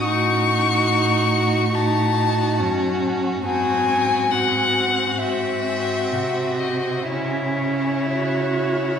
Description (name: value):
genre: classical, slow romantic movement for string quartet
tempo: 59-72 BPM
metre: 4/4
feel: rubato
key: unclear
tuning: A4 = 439 Hz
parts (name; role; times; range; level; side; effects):
- rich violin; melody; 0.0-9.0 s; C#5 to C#6; -22 LUFS; left 5 dB; none
- rich violin; second line; 0.0-9.0 s; E4 to F#4; -25 LUFS; equal; none
- warm viola; accompaniment; 0.0-9.0 s; B#3 to F#4; -26 LUFS; right 2 dB; none
- clear cello; bass; 0.0-9.0 s; F#2 to C#3; -25 LUFS; right 2 dB; none
room: wet cathedral reverb, RT60 5.3 s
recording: recorded in a church or concert hall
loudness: -18 LUFS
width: side -7 dB against mid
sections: 0.0-9.0 A section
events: none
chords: 0.0 D#m7b5/A; 3.5 G#7; 7.1 C#m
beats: | 0.04 0.88 1.74 2.61 | 3.47 4.33 5.21 6.14 | 7.12 8.12